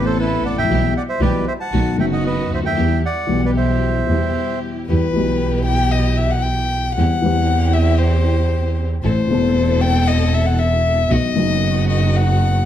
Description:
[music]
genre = tango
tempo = 115 BPM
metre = 4/4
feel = rubato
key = E minor, E harmonic minor from 4.9 s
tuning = A4 = 439 Hz
[part]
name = bandoneon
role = melody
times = 0.0-4.6 s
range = E4 to A5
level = -22 LUFS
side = right 2 dB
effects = none
[part]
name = dark baby grand piano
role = accompaniment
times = 0.0-12.7 s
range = E1 to A4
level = -20 LUFS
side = left 2 dB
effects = none
[part]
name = rich studio string section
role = stabs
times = 0.0-12.7 s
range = G3 to A4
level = -28 LUFS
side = equal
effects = none
[part]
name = dark double bass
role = bass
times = 0.0-12.7 s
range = E1 to E2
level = -18 LUFS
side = right 2 dB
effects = none
[part]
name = warm violin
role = second line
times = 4.9-12.7 s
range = B4 to G5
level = -21 LUFS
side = left 5 dB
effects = none
[sound]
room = moderate large studio reverb, RT60 1.3 s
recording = none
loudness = -15 LUFS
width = side -11 dB against mid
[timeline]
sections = 0.0-4.9 A section; 4.9-12.7 B section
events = break 4.4-4.9; violin solo 4.9-12.7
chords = 0.0 Amadd9; 0.7 Em/B; 1.7 B; 2.8 Em; 7.0 C/E; 9.0 Am; 11.1 B

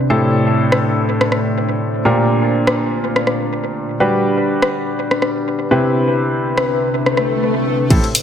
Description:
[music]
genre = piano house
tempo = 123 BPM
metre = 4/4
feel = swing 55% on 16ths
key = unclear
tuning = A4 = 440 Hz
[part]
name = clear grand piano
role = riff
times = 0.0-8.0 s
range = A2 to B4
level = -17 LUFS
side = equal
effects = sidechain pumping, analog delay
[part]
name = deep dark ambient pad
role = texture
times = 0.0-8.2 s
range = Bb2 to C5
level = -20 LUFS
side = left 1 dB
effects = chorus, built-in reverb, sidechain pumping
[part]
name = house drum kit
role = drums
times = 0.7-8.2 s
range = crash cymbal, hi-hat, rim click, shaker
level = -20 LUFS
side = equal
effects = analog delay
[part]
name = swell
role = sound effects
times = 7.1-7.9 s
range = none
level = -21 LUFS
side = left 1 dB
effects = none
[part]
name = solid FM bass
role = bass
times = 7.9-8.0 s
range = A1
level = -15 LUFS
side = equal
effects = sidechain pumping
[part]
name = electronic kick drum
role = drums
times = 7.9-8.0 s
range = none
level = -14 LUFS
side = equal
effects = none
[sound]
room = moderate plate reverb, RT60 1.9 s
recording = echo-heavy mix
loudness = -14 LUFS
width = side -8 dB against mid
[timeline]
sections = 0.0-7.9 A section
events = filter sweep on grand piano 0.0-7.9; swell 7.1-7.9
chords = 0.1 Am7; 2.1 Bb6; 4.0 Gmaj7; 5.7 Cmaj7

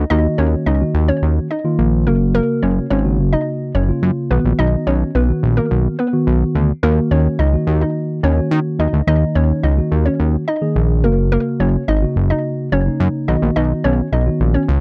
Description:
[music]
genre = dance-pop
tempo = 107 BPM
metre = 4/4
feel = straight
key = unclear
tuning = A4 = 439 Hz
[part]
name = fat analog bass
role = bass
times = 0.0-14.8 s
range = F#1 to D#3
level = -18 LUFS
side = equal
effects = none
[part]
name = hollow square pluck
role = melody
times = 0.1-14.6 s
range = A#3 to D#5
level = -24 LUFS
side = equal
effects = chorus, slapback echo
[part]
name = mellow tine electric piano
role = accompaniment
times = 0.1-14.7 s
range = C#3 to G#4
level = -22 LUFS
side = equal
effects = none
[sound]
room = light reverb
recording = dry, close 1970s-style studio recording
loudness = -17 LUFS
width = mono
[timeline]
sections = 0.0-14.8 A section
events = none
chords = 0.0 D#m; 2.1 F#; 4.3 B; 6.8 D#m; 11.0 F#; 13.3 B

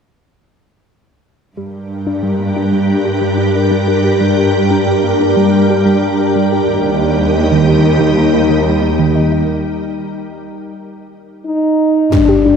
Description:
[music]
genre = cinematic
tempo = 91 BPM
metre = 4/4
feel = straight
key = G minor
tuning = A4 = 440 Hz
[part]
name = soft additive organ-like pad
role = sustained chords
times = 1.9-12.6 s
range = G3 to Bb4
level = -14 LUFS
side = equal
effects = ensemble chorus, built-in reverb
[part]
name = harp-like synth pluck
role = arpeggios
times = 1.6-12.6 s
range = Eb3 to G4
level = -18 LUFS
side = right 1 dB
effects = chorus, phaser, tape echo
[part]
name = warm symphonic cello section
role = bass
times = 1.6-12.5 s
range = Eb2 to G2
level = -17 LUFS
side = right 2 dB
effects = none
[part]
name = mellow French horn section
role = sustained chords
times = 11.5-12.6 s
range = D4 to Eb4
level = -11 LUFS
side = left 1 dB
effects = none
[part]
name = impact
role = sound effects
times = 12.1-12.6 s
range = none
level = -15 LUFS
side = equal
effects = none
[sound]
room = wet scoring stage reverb, RT60 1.4 s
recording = none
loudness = -11 LUFS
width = side -6 dB against mid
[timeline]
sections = 1.6-12.1 A section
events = break 9.5-12.1; impact 12.1-12.6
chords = 1.6 Gm; 6.8 Eb

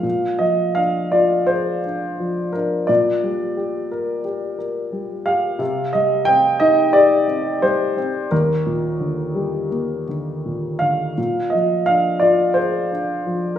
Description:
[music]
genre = classical, lyrical solo piano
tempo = 86 BPM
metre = 4/4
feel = uneven beats, rubato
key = unclear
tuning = A4 = 444 Hz
[part]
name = dark baby grand piano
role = solo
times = 0.0-13.6 s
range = Eb2 to G5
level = -17 LUFS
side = equal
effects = none
[sound]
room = moderate recital hall reverb, RT60 1.6 s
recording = studio reverb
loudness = -17 LUFS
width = side -10 dB against mid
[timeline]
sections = 0.0-13.6 A section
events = none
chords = 0.0 Bb7; 2.9 Bb6; 5.6 Cmadd9; 8.3 Ebmaj7; 11.2 Bb7

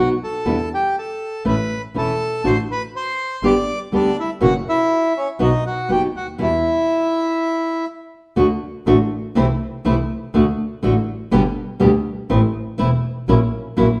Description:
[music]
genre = tango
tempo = 122 BPM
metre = 4/4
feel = rubato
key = unclear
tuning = A4 = 440 Hz
[part]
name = bandoneon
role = melody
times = 0.0-7.9 s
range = C#4 to D6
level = -23 LUFS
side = equal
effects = none
[part]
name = nylon-string guitar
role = accompaniment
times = 0.0-13.9 s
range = B2 to G4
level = -21 LUFS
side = equal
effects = none
[part]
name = clear double bass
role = bass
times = 0.0-14.0 s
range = E1 to E2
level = -24 LUFS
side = equal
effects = none
[sound]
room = wet stone room reverb, RT60 1.2 s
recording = band playing live in one room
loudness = -19 LUFS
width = mono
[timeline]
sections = 0.0-8.4 A section; 8.4-14.0 B section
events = stop 7.4-8.4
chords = 0.5 Em7; 1.5 A; 2.4 D5/A; 3.4 G; 4.4 F#7(no3); 5.4 B; 6.4 E5; 8.4 D; 9.4 Am/C; 10.3 D; 11.3 G; 12.3 Am; 13.3 F#7/A#

